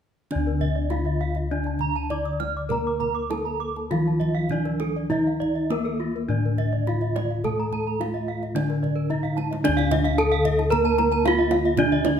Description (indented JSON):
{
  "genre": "Balinese gamelan",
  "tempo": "100-112 BPM",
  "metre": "4/4",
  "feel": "straight",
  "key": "D pelog",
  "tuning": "A4 = 440 Hz",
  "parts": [
    { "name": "gamelan-type bronze metallophone", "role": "melody", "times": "0.3-12.2 s", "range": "Bb3 to D5", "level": "-26 LUFS", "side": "equal", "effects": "none" },
    { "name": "gamelan-type bronze metallophone", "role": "accompaniment", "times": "0.3-12.2 s", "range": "D3 to Bb3", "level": "-32 LUFS", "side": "right 4 dB", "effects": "none" },
    { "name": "gamelan-type bronze metallophone", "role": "arpeggios", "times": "0.3-12.2 s", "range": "Bb4 to D6", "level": "-31 LUFS", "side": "left 3 dB", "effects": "none" },
    { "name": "gamelan-type bossed gongs", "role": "bass", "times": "0.3-12.2 s", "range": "D2 to Bb4", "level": "-26 LUFS", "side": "left 2 dB", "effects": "none" },
    { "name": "kendang", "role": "percussion", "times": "0.3-12.2 s", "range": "none", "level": "-33 LUFS", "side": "right 8 dB", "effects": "none" },
    { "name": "gamelan-type bronze metallophone", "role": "arpeggios", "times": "0.6-12.1 s", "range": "F4 to F6", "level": "-32 LUFS", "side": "right 7 dB", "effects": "none" }
  ],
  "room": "moderate recital hall reverb, RT60 1.2 s",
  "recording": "none",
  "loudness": "-21 LUFS",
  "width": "side -8 dB against mid",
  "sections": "0.3-9.6 A section; 9.6-12.2 B section",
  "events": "drum fill 9.1-9.6",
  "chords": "none"
}